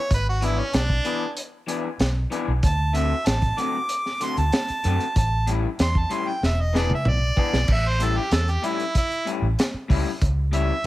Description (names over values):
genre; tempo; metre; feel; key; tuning
straight-eighth soul blues; 95 BPM; 4/4; straight; A mixolydian; A4 = 440 Hz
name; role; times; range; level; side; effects
clear harmonica; melody; 0.0-10.9 s; C#4 to D6; -26 LUFS; right 2 dB; overdrive
vintage muted fingered electric bass; bass; 0.1-10.9 s; E1 to F#2; -23 LUFS; equal; none
crunchy breakbeat drum kit; drums; 0.1-10.9 s; crash cymbal, hi-hat, kick drum, snare drum, toms; -24 LUFS; equal; none
electric guitar through a small old amp; stabs; 0.4-10.7 s; A2 to G#4; -29 LUFS; left 5 dB; spring reverb, plate reverb
room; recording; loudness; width
light reverb; none; -20 LUFS; side -16 dB against mid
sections
0.0-7.7 A section; 7.7-10.9 B section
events
drum fill 6.4-7.7; harmonica solo 7.7-10.9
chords
0.0 E7; 2.6 D7; 5.2 A7; 6.4 E7; 7.7 A7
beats
| 0.10 0.73 1.37 2.00 | 2.63 3.26 3.90 4.53 | 5.16 5.79 6.42 7.05 | 7.69 8.32 8.95 9.58 | 10.21 10.85